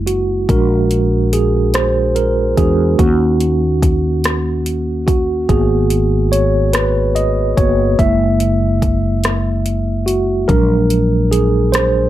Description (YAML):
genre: slow six-eight R&B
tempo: 48 BPM (dotted quarters)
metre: 6/8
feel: straight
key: G# minor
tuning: A4 = 440 Hz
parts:
  - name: mellow tine electric piano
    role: accompaniment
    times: 0.0-12.1 s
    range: F#3 to E5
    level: -15 LUFS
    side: right 2 dB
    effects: fast stereo tremolo
  - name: mellow fretless electric bass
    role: bass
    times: 0.0-12.1 s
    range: F#1 to E2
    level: -17 LUFS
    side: equal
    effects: none
  - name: smooth R&B drum kit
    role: drums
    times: 0.1-11.9 s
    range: hi-hat, kick drum, rim click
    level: -17 LUFS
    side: equal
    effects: overdrive
room: light reverb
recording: none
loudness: -12 LUFS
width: side -13 dB against mid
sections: 0.0-12.1 A section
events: tine electric piano solo 0.0-12.1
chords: 0.5 A#7b13; 3.0 D#m7; 5.5 G#m9; 8.0 F#7; 10.5 A#7b13